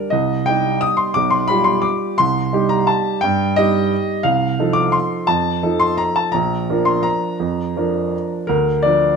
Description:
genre	classical, piano waltz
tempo	172 BPM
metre	3/4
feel	uneven beats, rubato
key	Bb major from 4.3 s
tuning	A4 = 440 Hz
part	warm baby grand piano	solo	0.0-9.2 s	Bb1 to Eb6	-15 LUFS	equal	none
room	light reverb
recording	close, detailed microphones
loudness	-15 LUFS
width	side -5 dB against mid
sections	0.0-9.2 A section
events	none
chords	0.1 Cm; 1.2 G7/B; 2.2 Cm; 4.3 F7/C; 6.3 Bb; 8.5 Bb/D

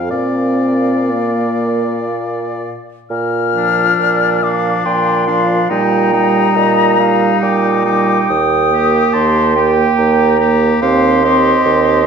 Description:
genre	classical, slow romantic movement for wind quintet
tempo	58-74 BPM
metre	3/4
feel	rubato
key	Bb major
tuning	A4 = 440 Hz
part	concert flute	melody	0.0-12.1 s	F5 to F6	-17 LUFS	left 6 dB	none
part	bright oboe	second line	0.0-12.0 s	D4 to F5	-21 LUFS	left 3 dB	none
part	dark clarinet	accompaniment	0.0-12.1 s	A4 to A5	-20 LUFS	right 10 dB	none
part	mellow bassoon	bass	0.0-12.1 s	Eb2 to Bb2	-16 LUFS	right 3 dB	none
part	mellow French horn	accompaniment	0.1-12.0 s	F3 to C4	-18 LUFS	right 1 dB	none
room	wet recital hall reverb, RT60 1.5 s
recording	dark, warm production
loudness	-11 LUFS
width	side -6 dB against mid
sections	0.0-3.1 A section; 3.1-12.1 A section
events	none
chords	0.1 Bb; 5.7 Eb/Bb; 8.3 Eb; 10.8 Cm/Eb

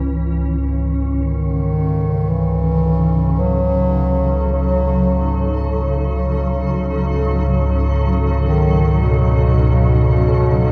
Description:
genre	dark ambient drone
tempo	free time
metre	none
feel	none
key	unclear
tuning	A4 = 436 Hz
part	granular cloud pad	sustained chords	0.0-10.7 s	C#3 to A4	-24 LUFS	equal	built-in reverb
part	deep rumbling drone	drone	0.0-10.7 s	C#2 to G#2	-21 LUFS	equal	built-in reverb, subtle chorus
part	wind-like tuned noise texture	texture	0.0-10.7 s	C#5	-31 LUFS	equal	built-in reverb
part	dark bass clarinet	melody	1.2-10.7 s	B2 to F#3	-21 LUFS	equal	diffuse ambient delay
room	wet huge ambient reverb, RT60 8.3 s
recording	dark, warm production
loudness	-17 LUFS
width	mono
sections	0.0-10.7 A section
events	fade-in on synth drone 0.0-10.7; fade-in on synth texture 0.0-10.7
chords	0.1 F#madd9/C#

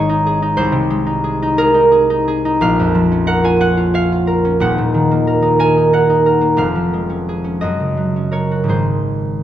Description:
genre	classical, solo harp piece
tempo	54-66 BPM (dotted quarters)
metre	6/8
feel	rubato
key	unclear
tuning	A4 = 439 Hz
part	concert harp	solo	0.0-9.4 s	Eb1 to Ab5	-13 LUFS	equal	none
room	moderate recital hall reverb, RT60 1.6 s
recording	dark, warm production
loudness	-13 LUFS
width	side -11 dB against mid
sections	0.0-9.4 A section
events	none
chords	0.0 Ab; 0.6 Ab/C; 2.6 Bbm; 4.6 Ebm; 6.6 Db/F; 7.6 Gb; 8.7 Ab

